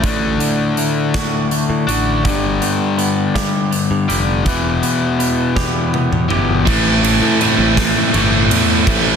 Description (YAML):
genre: quiet-loud alternative rock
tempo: 54 BPM (dotted quarters)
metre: 6/8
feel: straight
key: unclear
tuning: A4 = 443 Hz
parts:
  - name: twangy electric guitar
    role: arpeggios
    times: 0.0-6.7 s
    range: A2 to G4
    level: -22 LUFS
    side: right 11 dB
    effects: tape echo
  - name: cranked stack guitar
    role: riff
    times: 0.0-9.2 s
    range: E2 to D4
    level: -17 LUFS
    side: left 6 dB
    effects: overdrive
  - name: modern bright picked electric bass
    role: bass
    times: 0.0-9.2 s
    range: E1 to A2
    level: -20 LUFS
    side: right 1 dB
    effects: none
  - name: big rock drum kit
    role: drums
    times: 0.0-9.0 s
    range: hi-hat, kick drum, ride cymbal, snare drum, toms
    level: -20 LUFS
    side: right 1 dB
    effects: soft clipping on kick
  - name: overdriven electric guitar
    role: riff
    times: 6.6-9.2 s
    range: A2 to E4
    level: -20 LUFS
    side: right 5 dB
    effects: none
  - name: scooped high-gain guitar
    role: riff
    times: 6.7-9.2 s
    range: A2 to E4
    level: -18 LUFS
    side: right 14 dB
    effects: distortion
room: light reverb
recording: dense, heavily limited modern master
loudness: -13 LUFS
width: side -7 dB against mid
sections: 0.0-6.7 A section; 6.7-9.2 B section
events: drum fill 5.6-6.7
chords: 0.0 D/A; 2.3 G; 4.5 Em; 6.7 Am